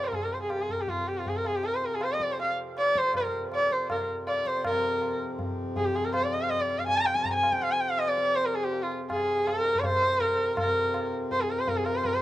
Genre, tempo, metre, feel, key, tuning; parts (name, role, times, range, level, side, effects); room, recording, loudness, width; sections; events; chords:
indian classical, Hindustani; 161 BPM; 4/4; straight; F raga bhimpalasi; A4 = 437 Hz
warm sarangi; melody; 0.0-12.2 s; F4 to Bb5; -26 LUFS; equal
hand-pumped harmonium; drone; 0.0-12.2 s; F2 to C3; -36 LUFS; left 1 dB; stereo widening
tabla; percussion; 0.1-12.2 s; -36 LUFS; equal
little or no reverb; recorded outdoors, with no room sound; -25 LUFS; side -14 dB against mid
0.0-4.6 A section; 4.6-12.2 B section
speeding up 0.0-12.2